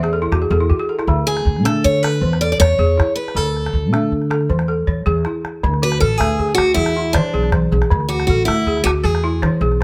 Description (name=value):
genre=west african traditional, West African string and xylophone music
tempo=106 BPM (dotted quarters)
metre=12/8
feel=straight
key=D lydian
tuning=A4 = 439 Hz
part: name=picked steel-string acoustic guitar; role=melody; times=0.0-9.4 s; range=D4 to D5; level=-22 LUFS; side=equal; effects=none
part: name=balafon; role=arpeggios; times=0.0-9.8 s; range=D3 to E5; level=-22 LUFS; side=equal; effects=none
part: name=upright bass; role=bass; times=0.0-9.8 s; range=A1 to E3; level=-22 LUFS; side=equal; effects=none
part: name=calabash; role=percussion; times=0.0-9.8 s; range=none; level=-23 LUFS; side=equal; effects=none
room=little or no reverb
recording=close, detailed microphones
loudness=-17 LUFS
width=mono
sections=0.0-5.6 A section; 5.6-9.8 B section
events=balafon fill 0.0-1.1; drum fill 5.1-5.6; steel-string acoustic guitar solo 5.6-9.8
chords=0.0 E; 1.1 D5; 2.2 E; 3.4 D5; 4.5 E; 5.6 D; 6.8 E; 7.9 D; 9.0 E